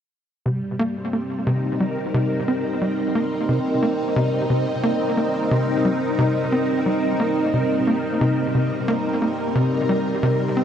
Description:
ambient, sequencer-driven space music; 89 BPM; 4/4; straight; A4 = 440 Hz
string machine, full ensemble; sustained chords; 0.5-10.6 s; G3 to Bb4; -21 LUFS; equal; phaser, ensemble chorus
tight sequencer bass; riff; 0.5-10.6 s; C3 to C4; -22 LUFS; equal; lush chorus, tape echo
wet huge ambient reverb, RT60 7.7 s; -19 LUFS; side -8 dB against mid
0.5-10.6 A section
0.5 Cm7

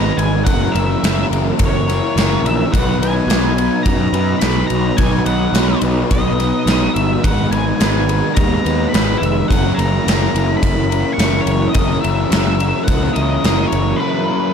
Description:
rock, shoegaze and dream pop; 106 BPM; 4/4; straight; B major; A4 = 441 Hz
octave-fuzz lead guitar; melody; 0.0-14.5 s; B4 to C#6; -24 LUFS; equal; distortion, digital delay
overdriven electric guitar; riff; 0.0-14.5 s; G#2 to B4; -20 LUFS; left 13 dB; lush chorus
overdriven semi-hollow guitar; riff; 0.0-14.5 s; F#2 to E4; -21 LUFS; right 14 dB; reverse reverb
fuzz picked electric bass; bass; 0.0-13.9 s; E#1 to F#2; -18 LUFS; equal; overdrive
gated 80s drum kit; drums; 0.2-13.9 s; kick drum, ride cymbal, snare drum; -20 LUFS; equal
studio reverb; dark, warm production; -13 LUFS; side -7 dB against mid
0.0-14.5 A section
break 14.0-14.5
0.5 F#5; 2.7 B; 7.2 G#m; 9.5 F#7sus4

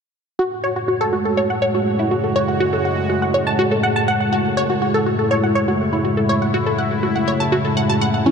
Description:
techno; 122 BPM; 4/4; straight; F# minor; A4 = 440 Hz
sweeping resonant pad; sustained chords; 0.4-8.3 s; A2 to F#4; -20 LUFS; equal; chorus
wide unison pluck; arpeggios; 0.4-8.3 s; C#4 to A5; -19 LUFS; equal; tape echo
overtone-sweeping drone; drone; 0.8-8.3 s; F#2 to C#3; -26 LUFS; left 2 dB; chorus, built-in reverb
soft octave-layered synth lead; melody; 8.3 s; E4; -16 LUFS; left 3 dB; chorus, tremolo
wet huge ambient reverb, RT60 3.8 s; dark, warm production; -16 LUFS; side -6 dB against mid
0.4-8.3 A section
filter sweep on synth pluck 0.4-8.3
0.4 F#madd9

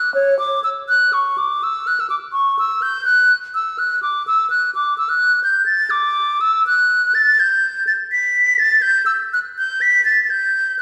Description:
classical, baroque-style fantasia for unaccompanied flute; 83 BPM (dotted quarters); 12/8; rubato; D major, G major from 5.9 s; A4 = 439 Hz
hollow concert flute; solo; 0.0-10.8 s; C#5 to B6; -17 LUFS; equal
wet recital hall reverb, RT60 1.8 s; heard from further back in the room, studio ambience; -17 LUFS; mono
0.0-10.8 A section

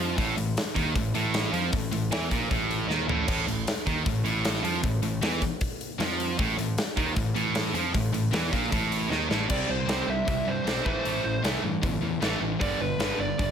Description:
hard rock; 154 BPM; 4/4; straight; A4 = 439 Hz
distorted electric guitar; riff; 0.0-13.5 s; G2 to C4; -30 LUFS; right 11 dB; overdrive
scooped high-gain guitar; riff; 0.0-13.5 s; G2 to C4; -31 LUFS; left 8 dB; distortion
fuzz picked electric bass; bass; 0.0-13.5 s; G1 to G2; -32 LUFS; equal; overdrive
big rock drum kit; drums; 0.2-13.5 s; crash cymbal, hi-hat, kick drum, snare drum, toms; -30 LUFS; left 1 dB
high-gain lead guitar; melody; 9.5-13.5 s; B4 to E5; -30 LUFS; equal; distortion, plate reverb
light reverb; -24 LUFS; side -8 dB against mid
0.0-9.5 A section; 9.5-13.5 B section
drum fill 2.9-3.3, 9.1-9.5
0.0 A5; 9.5 C5; 10.9 Am; 12.6 G

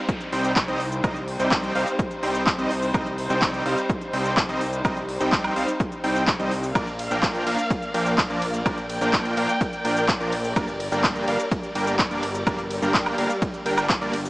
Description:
EDM, festival progressive house; 126 BPM; 4/4; straight; C minor; A4 = 440 Hz
warm studio string section; sustained chords; 0.0-14.3 s; C3 to G5; -29 LUFS; equal; vintage 12-bit sampler grit, sidechain pumping
downlifter; sound effects; 0.0-2.9 s; -40 LUFS; equal
big-room dance drum kit; drums; 0.1-14.3 s; handclaps, hi-hat, ride cymbal, shaker, woodblock; -27 LUFS; equal; overdrive
electronic kick drum; drums; 0.1-14.0 s; -26 LUFS; equal; overdrive
supersaw chords; riff; 0.3-14.1 s; F3 to G5; -26 LUFS; equal; sidechain pumping, tape echo
fat analog bass; bass; 0.3-14.3 s; G1 to C2; -31 LUFS; equal; sidechain pumping
light reverb; small speaker sound; -21 LUFS; side -21 dB against mid
0.0-14.3 A section
0.0 Cm; 6.8 Bb; 10.6 Gm

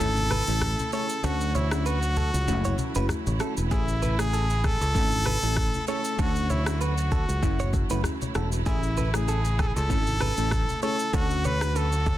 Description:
afrobeats; 97 BPM; 4/4; swing 55% on 16ths; A major; A4 = 439 Hz
clear trumpet; melody; 0.0-12.2 s; E4 to B4; -30 LUFS; equal; digital delay
glassy wavetable pluck; accompaniment; 0.0-11.8 s; A3 to A4; -33 LUFS; left 2 dB; chorus
warm studio string section; sustained chords; 0.0-12.2 s; C#3 to C#5; -38 LUFS; right 2 dB
fingered electric bass; bass; 0.0-12.2 s; E1 to D2; -26 LUFS; equal
afro-pop drum kit; drums; 0.0-12.2 s; kick drum, rim click, shaker; -30 LUFS; equal; soft clipping on snare
congas; percussion; 0.0-12.2 s; -34 LUFS; left 2 dB
direct-recorded clean electric guitar; riff; 0.3-12.2 s; G#4 to C#5; -35 LUFS; right 5 dB; digital delay
small room ambience; dense, heavily limited modern master; -23 LUFS; side -14 dB against mid
0.0-12.2 A section
break 0.0-3.7
0.0 Amaj7; 1.2 Dmaj7; 2.5 F#m7; 3.7 Amaj7; 6.2 Dmaj7; 7.4 F#m7; 8.7 Amaj7; 11.1 Dmaj7

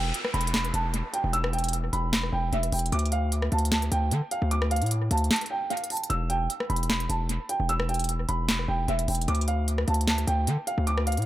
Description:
hip hop, trap; 151 BPM; 4/4; half-time; E phrygian; A4 = 443 Hz
dark grand piano; melody; 0.0-11.2 s; E5 to E6; -30 LUFS; right 2 dB; low-pass filter, analog delay
distorted 808-style bass; bass; 0.0-11.3 s; E1 to D3; -26 LUFS; equal; distortion
downlifter; sound effects; 0.0-2.9 s; -39 LUFS; equal
trap drum kit; drums; 0.1-11.3 s; handclaps, hi-hat, rim click, snare drum; -30 LUFS; equal; overdrive, analog delay
little or no reverb; echo-heavy mix; -24 LUFS; side -14 dB against mid
0.0-11.3 A section
break 5.3-6.1
0.0 Em; 2.9 D5; 6.1 Em; 9.3 D5

